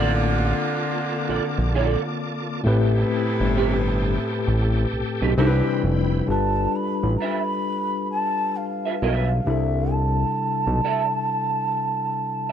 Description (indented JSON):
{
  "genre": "R&B",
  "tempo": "66 BPM",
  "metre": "4/4",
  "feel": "swing 63% on 16ths",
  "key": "C major",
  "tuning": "A4 = 441 Hz",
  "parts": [
    { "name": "electric guitar through a small old amp", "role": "second line", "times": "0.0-12.5 s", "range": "C4 to E5", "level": "-28 LUFS", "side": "right 8 dB", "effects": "ensemble chorus" },
    { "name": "bright tine electric piano", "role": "accompaniment", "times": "0.0-12.5 s", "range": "A2 to D5", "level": "-26 LUFS", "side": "left 4 dB", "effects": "medium stereo tremolo" },
    { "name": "bright tonewheel organ", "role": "sustained chords", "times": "0.0-6.3 s", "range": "Bb3 to D6", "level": "-32 LUFS", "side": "equal", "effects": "slow rotary speaker, overdrive, chorus vibrato" },
    { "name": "warm horn section", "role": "stabs", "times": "0.0-5.8 s", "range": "C3 to G4", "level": "-29 LUFS", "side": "right 2 dB", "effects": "none" },
    { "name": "fat analog bass", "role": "bass", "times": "0.0-10.8 s", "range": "F1 to C2", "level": "-22 LUFS", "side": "equal", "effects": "none" },
    { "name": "mellow bansuri", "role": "melody", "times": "6.3-12.5 s", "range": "E5 to B5", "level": "-25 LUFS", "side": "right 2 dB", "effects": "slapback echo" }
  ],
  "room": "light reverb",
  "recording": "dark, warm production",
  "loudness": "-20 LUFS",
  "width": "side -9 dB against mid",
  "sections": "0.0-6.3 A section; 6.3-12.5 B section",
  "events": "none",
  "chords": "0.0 Bbmaj7; 2.6 Am9; 5.4 Cmaj7; 6.3 G9; 9.5 C69"
}